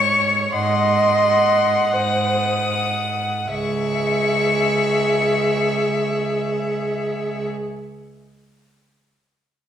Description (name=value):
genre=classical, slow romantic movement for string quartet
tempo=37-45 BPM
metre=4/4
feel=rubato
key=C# minor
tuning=A4 = 441 Hz
part: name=warm violin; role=melody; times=0.0-7.5 s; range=B#5 to D#6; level=-23 LUFS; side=left 8 dB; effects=none
part: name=dark violin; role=second line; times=0.0-7.5 s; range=C#5 to F#5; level=-25 LUFS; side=left 2 dB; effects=none
part: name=dark viola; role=accompaniment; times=0.0-7.5 s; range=G#4 to D#5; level=-21 LUFS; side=right 1 dB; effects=none
part: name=clear cello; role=bass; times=0.0-7.5 s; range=C#2 to G#2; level=-25 LUFS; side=right 6 dB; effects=none
room=wet recital hall reverb, RT60 1.3 s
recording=recorded in a church or concert hall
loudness=-17 LUFS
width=side -9 dB against mid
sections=0.0-3.5 A section; 3.5-9.6 B section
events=slowing down 0.0-3.5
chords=0.0 G#sus4; 0.5 G#7; 3.5 C#m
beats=0.54 1.93 | 3.50 5.03 6.54